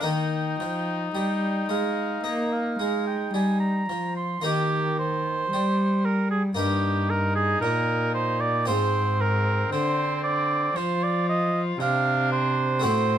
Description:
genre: classical, baroque-style sonata movement with continuo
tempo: 56 BPM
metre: 4/4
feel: uneven beats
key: Eb major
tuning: A4 = 440 Hz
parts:
  - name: bright trumpet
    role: melody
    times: 0.0-13.2 s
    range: C4 to F4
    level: -31 LUFS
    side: left 5 dB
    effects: none
  - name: warm oboe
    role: second line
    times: 0.0-13.2 s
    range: G4 to C6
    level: -26 LUFS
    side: right 4 dB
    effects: none
  - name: harpsichord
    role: accompaniment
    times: 0.0-13.2 s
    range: G2 to F#4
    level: -31 LUFS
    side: left 2 dB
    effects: none
  - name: warm cello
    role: bass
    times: 0.0-13.2 s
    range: G2 to Bb3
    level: -26 LUFS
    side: equal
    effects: none
room: light reverb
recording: none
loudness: -22 LUFS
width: side -10 dB against mid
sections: 0.0-4.4 A section; 4.4-13.2 B section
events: none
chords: 0.0 Eb; 6.6 Eb/G; 8.7 Fm/Ab

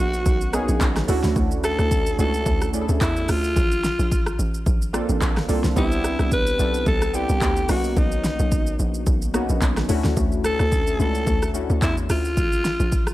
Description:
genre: amapiano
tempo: 109 BPM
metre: 4/4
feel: swing 55% on 16ths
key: unclear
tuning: A4 = 440 Hz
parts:
  - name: breathy alto saxophone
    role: melody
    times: 0.0-13.1 s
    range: D#4 to B4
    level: -25 LUFS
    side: equal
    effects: tape echo
  - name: warm analog keys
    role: accompaniment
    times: 0.0-12.4 s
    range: A3 to A4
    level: -26 LUFS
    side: equal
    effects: chorus
  - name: tight log drum bass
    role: bass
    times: 0.0-13.1 s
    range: A1 to E2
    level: -24 LUFS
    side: equal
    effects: none
  - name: deep house drum kit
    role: drums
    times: 0.1-13.1 s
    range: handclaps, hi-hat, kick drum, rim click, shaker, snare drum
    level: -24 LUFS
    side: equal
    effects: overdrive
room: little or no reverb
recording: none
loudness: -19 LUFS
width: side -16 dB against mid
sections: 0.0-13.1 A section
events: none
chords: 0.0 Bmaj9; 1.1 Dmaj9; 3.6 Bbmaj9; 5.8 Cmaj9; 7.7 Bmaj9; 9.9 Dmaj9; 12.4 Bb5

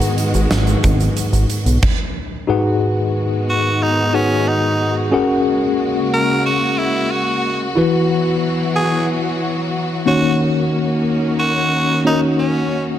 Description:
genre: 1980s-style pop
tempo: 91 BPM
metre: 4/4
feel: straight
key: G# minor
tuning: A4 = 440 Hz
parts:
  - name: tine electric piano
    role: accompaniment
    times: 0.0-13.0 s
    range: G#2 to F#5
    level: -17 LUFS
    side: left 2 dB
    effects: medium stereo tremolo
  - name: warm studio string section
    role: sustained chords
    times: 0.0-13.0 s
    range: C#3 to F#4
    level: -22 LUFS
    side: right 1 dB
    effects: none
  - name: huge arena drum kit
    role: drums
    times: 0.0-2.0 s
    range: crash cymbal, hi-hat, kick drum, snare drum, tambourine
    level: -20 LUFS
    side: right 1 dB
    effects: gated reverb
  - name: egg shaker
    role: percussion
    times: 0.0-1.8 s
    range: none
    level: -34 LUFS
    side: right 12 dB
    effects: none
  - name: chorused synth bass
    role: bass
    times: 0.3-1.8 s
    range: G#1 to B1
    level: -16 LUFS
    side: right 1 dB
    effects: none
  - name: raspy tenor saxophone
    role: melody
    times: 3.5-12.8 s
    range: C#4 to A#4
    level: -20 LUFS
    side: right 1 dB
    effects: digital delay
room: light reverb, small room ambience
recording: none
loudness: -15 LUFS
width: side -11 dB against mid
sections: 0.0-2.5 A section; 2.5-13.0 A section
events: stop 1.8-2.5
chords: 0.0 G#m7; 5.1 F#add9; 7.8 Esus2; 10.1 D#m7

